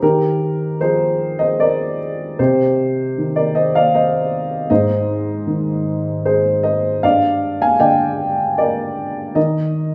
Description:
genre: neoclassical minimalist piano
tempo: 77 BPM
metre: 3/4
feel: rubato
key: unclear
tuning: A4 = 440 Hz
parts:
  - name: dark upright piano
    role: solo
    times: 0.0-9.9 s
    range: G2 to Ab5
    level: -18 LUFS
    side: equal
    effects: none
room: moderate scoring stage reverb, RT60 1.5 s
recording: none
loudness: -18 LUFS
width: mono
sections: 0.0-9.9 A section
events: none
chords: 0.0 Ebadd9; 2.4 Cm; 4.7 Ab; 7.0 Gm; 9.4 Eb5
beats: | 0.01 0.80 1.59 | 2.38 3.16 3.93 | 4.70 5.47 6.25 | 7.03 7.80 8.58 | 9.36

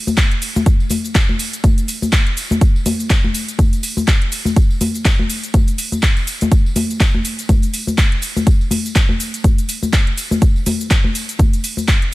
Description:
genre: house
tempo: 123 BPM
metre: 4/4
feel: swing 57% on 16ths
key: none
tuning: none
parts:
  - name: house drum kit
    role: drums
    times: 0.1-12.1 s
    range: handclaps, hi-hat, shaker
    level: -22 LUFS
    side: equal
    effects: none
  - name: congas and tambourine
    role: percussion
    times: 0.1-12.0 s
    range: none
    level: -21 LUFS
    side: left 2 dB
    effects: none
  - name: electronic kick drum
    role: drums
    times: 0.2-12.0 s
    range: none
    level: -13 LUFS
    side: equal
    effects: none
room: little or no reverb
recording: none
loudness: -14 LUFS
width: side -18 dB against mid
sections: 0.0-12.1 A section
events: none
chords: none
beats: 0.17 | 0.66 1.15 1.64 2.13 | 2.61 3.10 3.59 4.08 | 4.57 5.05 5.54 6.03 | 6.52 7.00 7.49 7.98 | 8.47 8.96 9.44 9.93 | 10.42 10.91 11.39 11.88

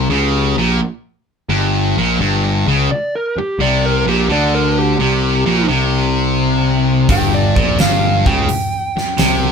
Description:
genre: blues rock power trio and southern rock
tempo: 86 BPM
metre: 4/4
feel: swing 68% on 8ths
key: unclear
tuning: A4 = 440 Hz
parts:
  - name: overdriven slide guitar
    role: melody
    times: 0.0-9.5 s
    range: G4 to G5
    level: -20 LUFS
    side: right 2 dB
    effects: none
  - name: distorted electric guitar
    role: riff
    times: 0.0-9.5 s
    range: G2 to D3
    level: -16 LUFS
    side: left 1 dB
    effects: overdrive
  - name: fuzz picked electric bass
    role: bass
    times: 0.0-9.5 s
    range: G1 to D2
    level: -17 LUFS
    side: left 1 dB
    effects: overdrive
  - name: huge arena drum kit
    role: drums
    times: 7.1-9.4 s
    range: hi-hat, kick drum, snare drum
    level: -16 LUFS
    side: equal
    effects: none
room: light reverb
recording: band playing live in one room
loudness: -13 LUFS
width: side -6 dB against mid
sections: 0.0-9.5 A section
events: none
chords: 0.0 G5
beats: 0.10 0.80 | 1.50 2.20 2.90 3.59 | 4.29 4.99 5.69 6.39 | 7.09 7.79 8.49 9.19

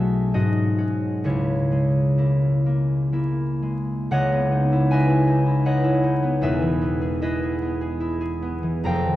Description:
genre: classical, solo harp piece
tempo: 56-81 BPM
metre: 3/4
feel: rubato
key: C# minor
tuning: A4 = 441 Hz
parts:
  - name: concert harp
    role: solo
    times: 0.0-9.2 s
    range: E1 to Bb5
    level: -19 LUFS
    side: equal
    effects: none
room: wet church reverb, RT60 3.5 s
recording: dark, warm production, vinyl crackle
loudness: -19 LUFS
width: side -15 dB against mid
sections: 0.0-4.1 A section; 4.1-9.2 B section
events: none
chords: 0.3 G#7sus4; 1.2 C#m6; 4.1 C#m11; 6.4 Emaj7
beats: 0.33 | 1.24 2.17 3.10 | 4.09 4.90 5.64 | 6.42 7.21 8.00 | 8.83

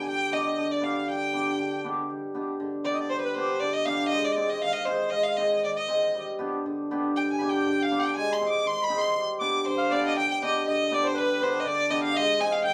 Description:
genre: klezmer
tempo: 119 BPM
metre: 2/4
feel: straight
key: G phrygian dominant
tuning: A4 = 439 Hz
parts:
  - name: clear violin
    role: melody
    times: 0.0-12.7 s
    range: B4 to D6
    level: -30 LUFS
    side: equal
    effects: plate reverb
  - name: accordion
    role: second line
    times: 0.0-12.7 s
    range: B4 to D6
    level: -34 LUFS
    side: equal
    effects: none
  - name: cimbalom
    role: accompaniment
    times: 0.0-12.7 s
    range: D3 to Ab4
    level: -30 LUFS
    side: equal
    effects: none
room: wet studio reverb, RT60 0.5 s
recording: heard from further back in the room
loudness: -26 LUFS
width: mono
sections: 0.0-2.1 A section; 2.1-10.2 B section; 10.2-12.7 C section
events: speeding up 0.0-12.7; violin solo 2.1-10.2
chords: 0.0 G; 4.1 Ab; 6.1 G; 8.2 Ab; 9.2 G; 12.1 Ab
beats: | 0.07 0.58 | 1.09 1.59 | 2.10 2.61 | 3.12 3.62 | 4.13 4.63 | 5.14 5.64 | 6.15 6.65 | 7.16 7.66 | 8.16 8.66 | 9.16 9.66 | 10.16 10.66 | 11.16 11.65 | 12.15 12.64

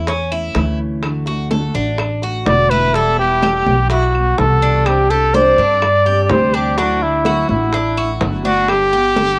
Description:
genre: latin, Cuban son and guajira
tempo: 125 BPM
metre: 4/4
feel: straight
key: unclear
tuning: A4 = 440 Hz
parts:
  - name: fingerpicked steel-string acoustic guitar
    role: accompaniment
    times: 0.0-9.4 s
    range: B2 to G4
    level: -28 LUFS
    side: equal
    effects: cassette tape
  - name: Cuban tres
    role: arpeggios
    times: 0.0-9.4 s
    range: C#4 to C5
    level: -24 LUFS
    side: equal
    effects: cassette tape
  - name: upright bass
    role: bass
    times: 0.0-9.3 s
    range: E1 to G2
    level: -22 LUFS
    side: equal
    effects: none
  - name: bongos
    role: percussion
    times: 0.1-9.4 s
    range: none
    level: -26 LUFS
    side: equal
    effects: none
  - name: congas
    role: percussion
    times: 0.1-9.4 s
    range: none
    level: -27 LUFS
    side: equal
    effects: none
  - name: claves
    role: percussion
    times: 0.3-8.9 s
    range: none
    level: -32 LUFS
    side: equal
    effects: none
  - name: breathy trumpet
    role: melody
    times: 2.5-9.4 s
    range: E4 to D5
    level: -17 LUFS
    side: equal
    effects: cassette tape, tape echo
room: moderate booth ambience, RT60 0.2 s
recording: home recording on cassette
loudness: -15 LUFS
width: mono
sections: 0.0-9.4 A section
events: none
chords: 0.0 A; 1.0 D; 2.9 Emadd9; 4.9 Csus2; 6.8 Dadd9; 8.7 Gadd9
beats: 0.08 0.56 | 1.03 1.51 1.99 2.47 | 2.95 3.43 3.91 4.38 | 4.86 5.34 5.82 6.30 | 6.78 7.25 7.73 8.21 | 8.69 9.17

